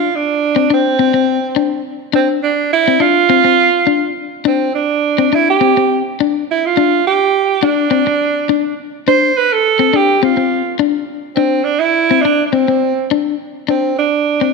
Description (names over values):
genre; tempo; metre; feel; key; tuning
highlife; 104 BPM; 4/4; straight; C major; A4 = 440 Hz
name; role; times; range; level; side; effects
clear alto saxophone; melody; 0.0-14.5 s; C4 to C5; -13 LUFS; right 7 dB; none
electric guitar at the edge of break-up; accompaniment; 0.0-14.5 s; C4 to D4; -16 LUFS; left 13 dB; none
room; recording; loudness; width
wet echo chamber reverb, RT60 2.0 s, small room ambience; 1960s-style stereo with parts hard left and right; -12 LUFS; side -3 dB against mid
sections
0.0-13.7 A section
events
none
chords
0.0 Csus2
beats
0.43 1.00 1.58 | 2.16 2.73 3.31 3.88 | 4.46 5.04 5.61 6.19 | 6.76 7.34 7.92 8.49 | 9.07 9.64 10.22 10.79 | 11.37 11.95 12.52 13.10 | 13.68 14.26